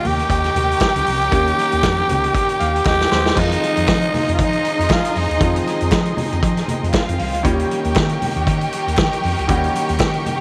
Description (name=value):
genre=disco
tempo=118 BPM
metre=4/4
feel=swing 56% on 16ths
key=F minor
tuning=A4 = 439 Hz
part: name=growling tenor saxophone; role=melody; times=0.0-5.7 s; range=Eb4 to G4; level=-21 LUFS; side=equal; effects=none
part: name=rich studio violin section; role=second line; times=0.0-10.4 s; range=Eb4 to G5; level=-27 LUFS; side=equal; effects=tape echo
part: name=clear grand piano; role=accompaniment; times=0.0-10.4 s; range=Eb3 to F5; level=-28 LUFS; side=equal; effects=none
part: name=clear studio string section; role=sustained chords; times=0.0-10.4 s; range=Ab4 to Db6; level=-32 LUFS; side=equal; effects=none
part: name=hollow-body short-scale fingered electric bass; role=bass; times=0.0-10.2 s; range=C2 to F3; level=-24 LUFS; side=equal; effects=none
part: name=vintage drum kit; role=drums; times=0.0-10.4 s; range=crash cymbal, hi-hat, kick drum, snare drum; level=-24 LUFS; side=equal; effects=none
part: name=congas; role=percussion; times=0.1-10.4 s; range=none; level=-32 LUFS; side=equal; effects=none
part: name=group handclap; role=percussion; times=0.8-10.1 s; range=none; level=-36 LUFS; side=equal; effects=none
room=light reverb, small room ambience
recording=none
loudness=-18 LUFS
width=mono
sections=0.0-3.4 A section; 3.4-10.4 B section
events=grand piano fill 2.3-3.4; drum fill 2.9-3.4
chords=0.0 Eb7; 3.4 Fm7; 7.5 Eb7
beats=0.30 0.81 | 1.32 1.83 2.34 2.85 | 3.37 3.88 4.39 4.90 | 5.41 5.92 6.43 6.94 | 7.45 7.96 8.47 8.98 | 9.49 10.00